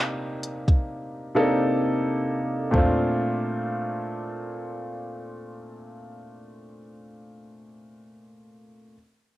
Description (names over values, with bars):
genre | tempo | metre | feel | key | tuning
contemporary R&B | free time | none | none | Bb major | A4 = 440 Hz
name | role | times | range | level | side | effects
clear grand piano | accompaniment | 0.0-9.0 s | Bb2 to A4 | -26 LUFS | equal | cassette tape
smooth R&B drum kit | drums | 0.4-3.0 s | hi-hat, kick drum, toms | -22 LUFS | equal | cassette tape
room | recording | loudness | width
light reverb | home recording on cassette | -23 LUFS | side -16 dB against mid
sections
0.0-2.7 A section; 2.7-6.4 B section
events
drums muted 0.9-2.7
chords
0.0 Cm9; 2.7 Bbmaj7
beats
free time